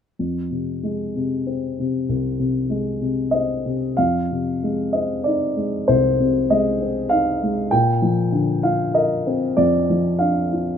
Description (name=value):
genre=classical, lyrical solo piano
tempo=95 BPM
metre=3/4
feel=rubato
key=F dorian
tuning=A4 = 440 Hz
part: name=dark baby grand piano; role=solo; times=0.2-10.8 s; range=C2 to G5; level=-18 LUFS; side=left 1 dB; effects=none
room=light reverb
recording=close, detailed microphones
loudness=-18 LUFS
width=side -8 dB against mid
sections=0.2-4.0 A section; 4.0-10.8 B section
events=none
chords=0.2 Fm7; 7.7 Bbadd9